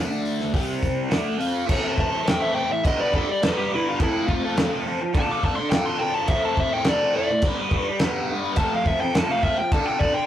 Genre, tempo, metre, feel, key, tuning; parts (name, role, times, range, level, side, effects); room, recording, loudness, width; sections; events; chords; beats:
garage rock duo or trio; 105 BPM; 4/4; straight; A minor; A4 = 441 Hz
biting overdriven guitar; riff; 0.0-10.3 s; A2 to B4; -24 LUFS; equal; phaser
cloth-damped thuddy drum kit; drums; 0.3-10.1 s; crash cymbal, hi-hat, kick drum, snare drum; -25 LUFS; equal
fuzz lead guitar; melody; 2.0-10.3 s; E4 to D6; -24 LUFS; equal; distortion
wet studio reverb, RT60 0.6 s; rough rehearsal-room recording, warm saturation; -20 LUFS; side -11 dB against mid
0.0-1.7 A section; 1.7-10.3 B section
0.0 D5; 0.5 C5; 1.1 Am; 2.8 G; 4.0 F; 5.1 Dm; 6.3 Am; 7.4 G; 8.6 F; 9.7 Dm
0.53 1.11 | 1.69 2.26 2.84 3.41 | 3.98 4.56 5.13 5.71 | 6.28 6.85 7.42 7.99 | 8.57 9.14 9.71